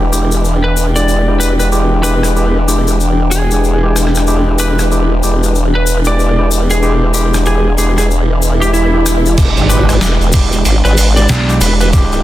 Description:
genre	glitch hop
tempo	94 BPM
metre	4/4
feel	swing 61% on 16ths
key	E minor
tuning	A4 = 439 Hz
part	warbly tape-like pad	sustained chords	0.0-12.2 s	E3 to G5	-20 LUFS	left 2 dB	chorus, built-in reverb, sidechain pumping
part	formant-sweep wobble bass	bass	0.0-12.2 s	E1 to G#1	-13 LUFS	equal	chorus
part	tine electric piano	stabs	0.1-12.2 s	G#3 to G4	-18 LUFS	right 1 dB	overdrive, sidechain pumping, dub echo
part	tube shaker	percussion	0.1-12.2 s	none	-22 LUFS	left 6 dB	none
part	lightly driven lead guitar	melody	0.6-11.9 s	E4 to D5	-19 LUFS	equal	dub echo
part	boom bap sampler-style drum kit	drums	2.2-12.2 s	crash cymbal, hi-hat, rim click, snare drum	-18 LUFS	right 2 dB	none
part	swell and impact	sound effects	8.3-11.9 s	none	-20 LUFS	right 1 dB	none
part	electronic kick drum	drums	9.4-12.1 s	none	-11 LUFS	equal	none
part	gritty slap bass	bass	11.3-11.6 s	B1	-14 LUFS	equal	overdrive
room	digital ambience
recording	dense, heavily limited modern master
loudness	-10 LUFS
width	side -14 dB against mid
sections	0.0-9.4 A section; 9.4-12.2 B section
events	swell 8.3-9.4; drop 9.4-12.2; impact 9.4-11.9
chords	0.0 E7#9

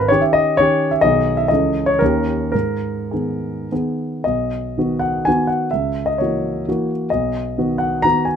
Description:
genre	classical, romantic triple-time dance for piano with dotted rhythms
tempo	97-141 BPM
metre	3/4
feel	rubato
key	G# minor, B major from 4.3 s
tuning	A4 = 441 Hz
part	warm grand piano	solo	0.0-8.4 s	G#1 to A#5	-16 LUFS	equal	none
room	little or no reverb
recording	close, detailed microphones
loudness	-16 LUFS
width	side -8 dB against mid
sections	0.0-4.3 A section; 4.3-8.4 B section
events	none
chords	0.0 D#7/G#; 1.0 G#m/B; 1.5 A/C#; 2.0 D#7; 2.5 G#m; 4.3 B; 5.7 F#7/C#; 7.1 B

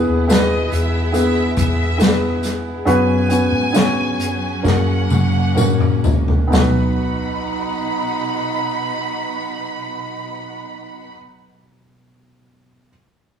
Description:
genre	pop ballad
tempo	62-72 BPM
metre	4/4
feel	straight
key	B major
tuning	A4 = 442 Hz
part	warm French horn section	second line	0.0-0.1, 6.5-11.1 s	D#4	-27 LUFS	right 4 dB	none
part	felt-muted upright piano	accompaniment	0.0-12.9 s	B1 to C#5	-20 LUFS	equal	none
part	warm studio string section	sustained chords	0.0-11.1 s	B2 to F#5	-30 LUFS	equal	none
part	vintage muted fingered electric bass	bass	0.0-11.1 s	B1 to G#2	-21 LUFS	left 1 dB	none
part	bright studio violin section	melody	0.3-11.1 s	D#5 to B5	-26 LUFS	right 1 dB	none
part	unplugged drum kit	drums	0.3-6.8 s	hi-hat, kick drum, snare drum, toms	-18 LUFS	left 1 dB	none
part	tambourine	percussion	0.3-7.0 s	none	-36 LUFS	left 6 dB	none
room	moderate stone room reverb, RT60 1.3 s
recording	rough rehearsal-room recording, tube saturation, small room ambience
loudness	-15 LUFS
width	side -8 dB against mid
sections	0.0-6.5 A section; 6.5-10.4 B section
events	slowing down 0.0-6.5; drum fill 4.6-6.5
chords	0.0 E; 2.9 F#sus4; 4.6 F#; 6.5 B

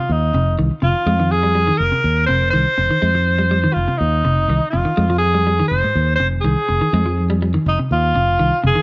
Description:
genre	afrobeat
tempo	123 BPM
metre	4/4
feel	straight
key	F minor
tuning	A4 = 442 Hz
part	breathy alto saxophone	melody	0.0-8.8 s	Eb4 to C5	-21 LUFS	equal	none
part	clean electric guitar	arpeggios	0.0-8.8 s	Ab2 to Ab3	-24 LUFS	equal	tape echo
part	fingered electric bass	bass	0.1-8.7 s	F1 to F2	-21 LUFS	equal	none
room	light reverb, studio reverb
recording	nothing above 7.5 kHz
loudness	-17 LUFS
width	mono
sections	0.0-8.8 A section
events	none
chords	0.0 Fm7

